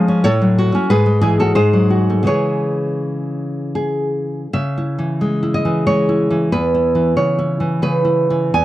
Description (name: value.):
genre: romantic piece for solo classical guitar.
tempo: 74-95 BPM.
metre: 3/4.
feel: rubato.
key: C# minor.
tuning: A4 = 444 Hz.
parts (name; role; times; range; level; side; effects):
nylon-string guitar; solo; 0.0-8.6 s; E2 to G#5; -14 LUFS; equal; none.
room: little or no reverb.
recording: dry, close 1970s-style studio recording.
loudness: -14 LUFS.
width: side -15 dB against mid.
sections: 0.0-4.5 A section; 4.5-8.6 B section.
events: none.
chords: 0.3 F#m/A; 0.9 C#m/G#; 1.6 G#7b9; 2.3 C#m; 6.5 C#m/E.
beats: | 0.27 0.91 1.57 | 2.29 3.03 3.76 | 4.53 5.21 5.87 | 6.51 7.17 7.82 | 8.53.